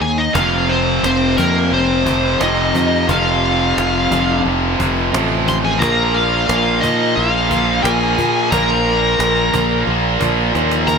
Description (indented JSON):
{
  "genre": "hard rock",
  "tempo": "88 BPM",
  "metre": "4/4",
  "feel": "straight",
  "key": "unclear",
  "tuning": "A4 = 440 Hz",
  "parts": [
    { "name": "high-gain lead guitar", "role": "melody", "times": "0.0-11.0 s", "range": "Bb4 to C6", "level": "-19 LUFS", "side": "left 2 dB", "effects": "distortion" },
    { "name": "smooth overdriven lead guitar", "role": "second line", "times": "0.0-11.0 s", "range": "Bb3 to C5", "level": "-24 LUFS", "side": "equal", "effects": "none" },
    { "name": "overdriven electric guitar", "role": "riff", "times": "0.0-11.0 s", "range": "F2 to Bb3", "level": "-21 LUFS", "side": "right 11 dB", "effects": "none" },
    { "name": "tight distorted guitar", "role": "riff", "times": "0.0-11.0 s", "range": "F2 to Bb3", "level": "-22 LUFS", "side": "left 12 dB", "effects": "distortion" },
    { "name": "modern bright fingered electric bass", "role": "bass", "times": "0.0-11.0 s", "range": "F1 to Bb2", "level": "-21 LUFS", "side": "equal", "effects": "none" },
    { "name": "raw garage guitar", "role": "riff", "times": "0.3-11.0 s", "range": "F2 to Bb3", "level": "-21 LUFS", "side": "right 1 dB", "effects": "overdrive" },
    { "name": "cajon", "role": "drums", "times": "0.4-11.0 s", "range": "none", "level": "-26 LUFS", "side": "equal", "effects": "none" }
  ],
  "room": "moderate lush hall reverb, RT60 2.5 s",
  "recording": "bright 1980s-style digital production",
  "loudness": "-13 LUFS",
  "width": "side -6 dB against mid",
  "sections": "0.4-11.0 A section",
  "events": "break 0.0-0.4; drum fill 10.5-11.0",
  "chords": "0.4 F5; 5.8 Bb5"
}